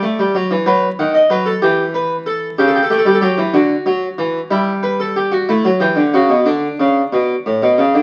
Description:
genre	classical, baroque-style two-part invention for harpsichord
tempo	62 BPM (dotted quarters)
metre	6/8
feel	straight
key	B minor, D major from 4.5 s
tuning	A4 = 441 Hz
part	harpsichord	solo	0.0-8.0 s	A2 to F#5	-15 LUFS	equal	none
room	moderate studio reverb, RT60 0.9 s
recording	very old 78 rpm record, vinyl crackle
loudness	-15 LUFS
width	mono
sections	0.7-8.0 A section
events	none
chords	0.0 Em11; 0.7 B7; 1.6 Em; 2.6 A7/C#; 3.5 D; 4.5 Em/G; 5.5 A7; 6.5 D5

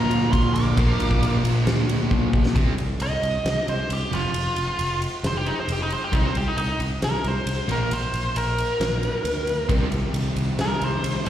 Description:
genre	hard rock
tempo	134 BPM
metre	4/4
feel	straight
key	C minor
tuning	A4 = 443 Hz
part	nasal lead guitar with a parked wah	melody	0.0-11.3 s	Eb4 to D6	-26 LUFS	equal	overdrive, slapback echo
part	octave-fuzz lead guitar	second line	0.0-1.4 s	F4 to Bb4	-33 LUFS	right 1 dB	distortion, slapback echo
part	overdriven electric guitar	riff	0.0-11.3 s	F2 to C4	-27 LUFS	right 6 dB	tremolo
part	sludgy distorted guitar	riff	0.0-11.3 s	F2 to C4	-28 LUFS	left 6 dB	overdrive, slapback echo
part	sludgy distorted guitar	riff	0.0-2.6, 9.7-11.3 s	Bb2 to G4	-28 LUFS	equal	overdrive, slapback echo
part	picked electric bass	bass	0.0-11.3 s	F1 to Bb2	-26 LUFS	equal	none
part	huge arena drum kit	drums	0.1-11.3 s	kick drum, ride cymbal, snare drum	-26 LUFS	equal	none
room	light reverb, small room reverb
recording	live gig heard through the venue's PA, recital hall reverb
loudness	-20 LUFS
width	side -11 dB against mid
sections	0.0-2.6 A section; 2.6-11.3 B section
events	drum fill 2.1-2.6; lead electric guitar solo 2.6-11.3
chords	0.0 Bb; 2.6 Cm; 4.1 F5; 6.1 C5; 7.7 Bb; 9.7 Cm

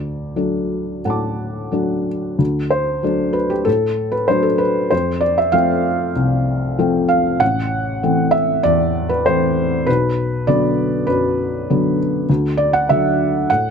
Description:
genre	neoclassical minimalist piano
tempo	97 BPM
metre	4/4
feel	uneven beats, rubato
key	D mixolydian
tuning	A4 = 439 Hz
part	felt-muted upright piano	solo	0.0-13.7 s	A1 to D6	-15 LUFS	equal	none
room	light reverb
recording	close, detailed microphones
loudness	-15 LUFS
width	side -6 dB against mid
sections	0.0-2.4 A section; 2.4-13.7 A section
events	none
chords	0.0 D; 4.9 F; 7.4 Am; 9.9 Bm; 12.3 D

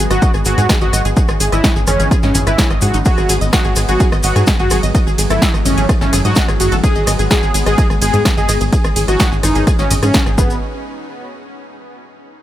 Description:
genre	melodic techno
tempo	127 BPM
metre	4/4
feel	straight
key	G# phrygian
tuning	A4 = 439 Hz
part	lush unison pad	sustained chords	0.0-10.6 s	E3 to F#5	-25 LUFS	equal	chorus, phaser, sidechain pumping
part	wide unison pluck	arpeggios	0.0-10.6 s	D#4 to D#6	-23 LUFS	equal	sidechain pumping, tape echo
part	tight sequencer bass	bass	0.0-10.6 s	G#1 to G#2	-17 LUFS	equal	sidechain pumping
part	fat analog lead	melody	0.1-10.6 s	B3 to G#4	-19 LUFS	equal	analog chorus, sidechain pumping, tape echo
part	deep house drum kit	drums	0.1-10.4 s	hi-hat, ride cymbal, rim click, snare drum, toms	-20 LUFS	equal	none
part	cabasa	percussion	0.1-10.6 s	none	-25 LUFS	left 3 dB	none
part	electronic kick drum	drums	0.2-10.5 s	none	-15 LUFS	equal	none
room	digital ambience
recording	none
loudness	-11 LUFS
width	side -13 dB against mid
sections	0.0-10.6 A section; 10.6-12.4 B section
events	drop 0.0-10.6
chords	0.0 G#m7; 1.2 C#m/G#; 3.1 G#m7; 4.9 F#m7/G#; 6.8 G#m7; 8.7 C#m/G#; 10.4 G#m7; 10.6 N.C.

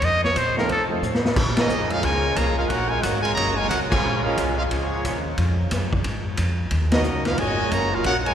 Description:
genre	jazz, big band swing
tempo	179 BPM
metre	4/4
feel	swing 63% on 8ths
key	Bb minor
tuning	A4 = 440 Hz
part	clear trumpet	melody	0.0-0.8 s	A4 to Eb5	-26 LUFS	equal	none
part	upright bass	bass	0.0-8.3 s	Gb1 to C3	-25 LUFS	equal	none
part	vintage drum kit	drums	0.0-8.3 s	crash cymbal, hi-hat, kick drum, ride cymbal, snare drum	-26 LUFS	equal	none
part	warm baby grand piano	accompaniment	0.6-1.0 s	F3 to F4	-33 LUFS	right 1 dB	none
part	bright trumpet section	melody	1.6-8.3 s	Bb3 to Bb5	-25 LUFS	equal	none
part	clear trombone section	second line	1.6-8.3 s	Bb2 to Gb4	-27 LUFS	right 1 dB	none
room	wet cathedral reverb, RT60 7.2 s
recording	recorded in a church or concert hall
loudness	-20 LUFS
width	side -9 dB against mid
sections	0.0-1.4 A section; 1.4-8.3 B section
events	trumpet solo 0.0-1.4; drum fill 1.0-1.4; band accent 1.5, 3.9, 6.9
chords	0.0 F7; 1.4 Bbm7; 2.7 Ebm7; 4.0 Bbm7; 6.7 Ebm7

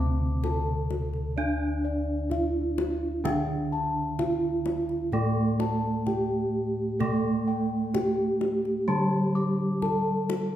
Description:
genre	Javanese gamelan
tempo	64 BPM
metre	4/4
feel	straight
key	D slendro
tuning	A4 = 440 Hz
part	gamelan-type bronze metallophone	melody	0.0-10.6 s	C4-25c to D5	-30 LUFS	right 1 dB	none
part	gamelan-type bronze metallophone	accompaniment	0.0-10.6 s	C3-25c to D4	-29 LUFS	right 1 dB	none
part	gamelan-type bossed gongs	arpeggios	0.0-10.3 s	D5 to D6	-34 LUFS	left 5 dB	none
part	gamelan-type bossed gongs	bass	0.0-10.6 s	D2 to C5-25c	-31 LUFS	equal	none
part	kendang	percussion	0.4-10.5 s	none	-36 LUFS	left 5 dB	none
room	wet recital hall reverb, RT60 1.4 s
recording	recorded in a church or concert hall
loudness	-25 LUFS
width	side -11 dB against mid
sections	0.0-10.6 A section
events	none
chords	none

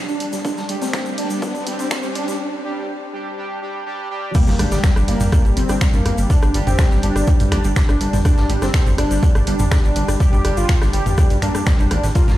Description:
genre	melodic techno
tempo	123 BPM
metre	4/4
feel	straight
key	G minor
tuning	A4 = 440 Hz
part	riser and impact	sound effects	0.0-6.3 s	none	-30 LUFS	equal	none
part	wide unison lead	melody	0.1-12.4 s	G3 to G4	-25 LUFS	equal	analog chorus, sidechain pumping, digital delay
part	analog pluck	arpeggios	0.1-12.4 s	G3 to D5	-29 LUFS	right 1 dB	chorus, sidechain pumping, digital delay
part	punchy analog drum machine	drums	0.1-12.4 s	crash cymbal, finger snaps, hi-hat, ride cymbal, rim click, toms	-25 LUFS	equal	high-pass filter on snare, high-pass filter on toms, high-pass filter on hats, high-pass filter on cymbals
part	egg shaker	percussion	0.1-12.4 s	none	-36 LUFS	left 3 dB	none
part	street-band drum kit	drums	0.2-12.4 s	hi-hat, snare drum	-36 LUFS	equal	sidechain pumping on hats, high-pass filter on hats, high-pass filter on snare, high-pass filter on room
part	electronic kick drum	drums	0.4-12.3 s	none	-15 LUFS	equal	high-pass filter on kick
part	analog synth brass	stabs	0.7-11.4 s	G3 to G4	-28 LUFS	right 1 dB	chorus, sidechain pumping, digital delay
part	fat analog bass	bass	4.5-12.4 s	G1 to G2	-20 LUFS	equal	sidechain pumping
room	digital ambience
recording	played on a big sound system in a bare room, stone room reverb, high-pass filter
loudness	-15 LUFS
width	side -15 dB against mid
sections	0.0-4.3 A section; 4.3-12.4 B section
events	build-up 0.0-4.3; riser 0.0-2.4; filter sweep on analog synth lead 0.0-4.3; break 2.4-4.3; drop 4.3-12.4; impact 4.3-6.3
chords	0.0 G5; 4.3 Gm

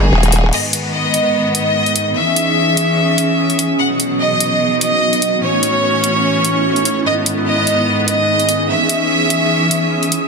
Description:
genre	heavy wobble dubstep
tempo	147 BPM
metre	4/4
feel	swing 55% on 16ths, half-time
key	G# phrygian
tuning	A4 = 440 Hz
part	bright chamber violin section	melody	0.0-10.2 s	G#4 to F#5	-16 LUFS	right 1 dB	tape echo
part	clear studio string section	sustained chords	0.0-10.3 s	G#2 to F#4	-20 LUFS	left 1 dB	low-pass filter
part	formant-sweep wobble bass	bass	0.1-0.5 s	D#1	-12 LUFS	equal	chorus, overdrive
part	big-room dance drum kit	drums	0.2-10.2 s	crash cymbal, hi-hat	-19 LUFS	equal	none
part	granular cloud pad	texture	1.0-10.3 s	B3 to D#6	-20 LUFS	right 2 dB	built-in reverb
room	moderate lush hall reverb, RT60 2.1 s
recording	dense, heavily limited modern master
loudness	-12 LUFS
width	side -4 dB against mid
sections	0.5-10.3 A section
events	none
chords	0.0 G#5; 0.5 G#m; 2.2 C#madd9; 3.8 B; 5.4 A; 7.1 G#m; 8.7 C#madd9

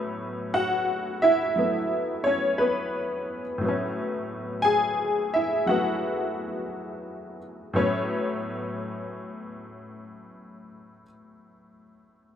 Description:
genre	solo jazz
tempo	58 BPM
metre	4/4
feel	swing 68% on 8ths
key	A major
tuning	A4 = 440 Hz
part	honky-tonk upright piano	solo	0.0-12.4 s	A2 to G#5	-24 LUFS	left 1 dB	none
room	light reverb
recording	minimal, uncompressed stereo recording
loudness	-24 LUFS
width	side -9 dB against mid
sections	0.0-7.7 A section; 7.7-11.9 B section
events	none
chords	0.0 A69

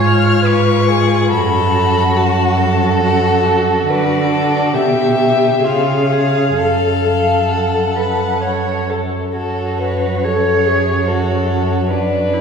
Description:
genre	classical, slow romantic movement for string quartet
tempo	63-72 BPM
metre	3/4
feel	rubato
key	F# minor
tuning	A4 = 440 Hz
part	warm violin	melody	0.0-12.4 s	C#5 to E#6	-20 LUFS	left 4 dB	none
part	dark violin	second line	0.0-12.4 s	E#4 to C#5	-19 LUFS	left 1 dB	none
part	rich viola	accompaniment	0.0-12.4 s	D4 to C#5	-19 LUFS	left 1 dB	none
part	rich cello	bass	0.0-12.4 s	F#2 to D3	-17 LUFS	right 3 dB	none
room	wet church reverb, RT60 2.9 s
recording	heard from further back in the room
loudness	-13 LUFS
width	side -6 dB against mid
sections	0.0-9.4 A section; 9.4-12.4 B section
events	none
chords	0.0 C#/G#; 1.3 F#m; 3.9 D; 4.7 G/B; 5.6 C#; 6.6 F#m

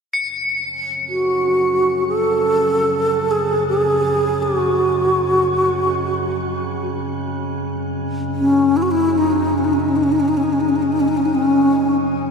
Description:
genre	world meditative, free-time meditation music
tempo	free time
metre	none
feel	none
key	F# dorian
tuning	A4 = 440 Hz
part	metallic inharmonic drone	drone	0.7-12.3 s	F#2 to C#3	-23 LUFS	equal	chorus, built-in reverb
part	crotales	texture	0.1-7.4 s	C#7	-24 LUFS	left 3 dB	shimmer reverb
part	breathy bright low xiao	melody	1.1-11.9 s	C#4 to A4	-16 LUFS	equal	shimmer reverb, ping-pong delay
room	wet huge ambient reverb, RT60 3.9 s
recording	dark, warm production, lossy compression artefacts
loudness	-16 LUFS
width	side -5 dB against mid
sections	0.1-12.3 A section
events	none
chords	none

